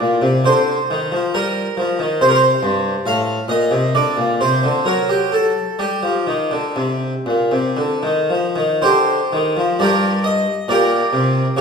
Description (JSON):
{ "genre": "classical, baroque-style suite movement for harpsichord", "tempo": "55-71 BPM", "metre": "4/4", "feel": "rubato", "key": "G minor", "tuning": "A4 = 440 Hz", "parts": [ { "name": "harpsichord", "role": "solo", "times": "0.0-11.6 s", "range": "G2 to F5", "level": "-15 LUFS", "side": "equal", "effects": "none" } ], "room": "wet recital hall reverb, RT60 1.5 s", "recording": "recorded in a church or concert hall", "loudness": "-15 LUFS", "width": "side -5 dB against mid", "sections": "0.0-9.8 A section; 9.8-11.6 B section", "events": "none", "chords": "0.4 Bb/D; 2.2 Gm11; 3.9 D7; 5.8 Gm" }